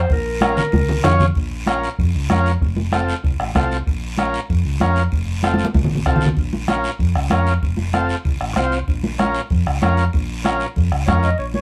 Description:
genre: latin, cumbia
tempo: 191 BPM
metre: 4/4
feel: straight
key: Bb harmonic minor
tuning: A4 = 440 Hz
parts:
  - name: warm clarinet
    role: melody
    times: 0.0-1.2, 11.1-11.6 s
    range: Bb4 to Eb5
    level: -26 LUFS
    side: equal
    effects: none
  - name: hollow-body short-scale fingered electric bass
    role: bass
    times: 0.0-11.6 s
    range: F1 to F2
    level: -23 LUFS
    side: equal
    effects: none
  - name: bombo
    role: percussion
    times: 0.1-11.2 s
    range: none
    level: -24 LUFS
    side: equal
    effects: none
  - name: congas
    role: percussion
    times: 0.1-11.6 s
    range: none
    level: -24 LUFS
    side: equal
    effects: none
  - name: guiro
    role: percussion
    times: 0.1-11.6 s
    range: none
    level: -36 LUFS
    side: equal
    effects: none
  - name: combo organ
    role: accompaniment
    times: 0.4-11.3 s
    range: C4 to Db5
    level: -24 LUFS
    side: equal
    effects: none
room: moderate studio reverb, RT60 0.5 s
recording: band playing live in one room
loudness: -19 LUFS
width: mono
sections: 0.0-1.4 A section; 1.4-11.4 B section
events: drum fill 0.7-1.4, 5.4-6.4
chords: 0.0 Bbm; 2.6 F; 3.9 Bbm; 5.1 F; 6.4 Bbm; 7.6 F; 8.9 Bbm

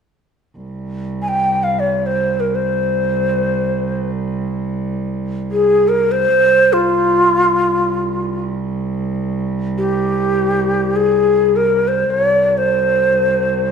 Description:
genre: Arabic maqam ensemble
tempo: free time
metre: none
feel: none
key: C maqam bayati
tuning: A4 = 439 Hz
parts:
  - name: rich cello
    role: drone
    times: 0.6-13.7 s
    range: C2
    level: -22 LUFS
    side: right 3 dB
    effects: none
  - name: breathy bright ney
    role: melody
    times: 1.2-13.7 s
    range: F4 to Ab5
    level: -14 LUFS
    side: left 1 dB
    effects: none
room: moderate recital hall reverb, RT60 1.7 s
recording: recorded in a church or concert hall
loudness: -14 LUFS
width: side -6 dB against mid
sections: 0.6-13.7 A section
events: none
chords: none

